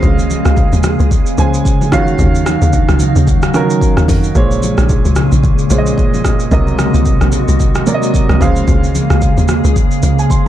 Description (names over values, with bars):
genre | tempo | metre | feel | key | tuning
amapiano | 111 BPM | 4/4 | swing 58% on 16ths | Bb minor | A4 = 440 Hz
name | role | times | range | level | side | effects
dark grand piano | accompaniment | 0.0-10.5 s | Bb2 to C6 | -16 LUFS | right 4 dB | none
glassy FM pad | sustained chords | 0.0-10.5 s | Db3 to F5 | -17 LUFS | equal | ensemble chorus, built-in reverb, sidechain pumping
tight log drum bass | bass | 0.0-10.3 s | Bb1 to F2 | -14 LUFS | equal | none
deep house drum kit | drums | 0.0-10.4 s | hi-hat, kick drum, rim click, shaker | -15 LUFS | equal | none
congas | percussion | 0.0-10.2 s | none | -23 LUFS | left 4 dB | none
room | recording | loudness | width
little or no reverb | dark, warm production | -10 LUFS | side -12 dB against mid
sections
0.0-10.5 A section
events
none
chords
0.0 Bbm9/Db; 1.9 Ebm9; 4.4 Bbm9; 6.5 Cm7b5; 8.4 Bbm9/Db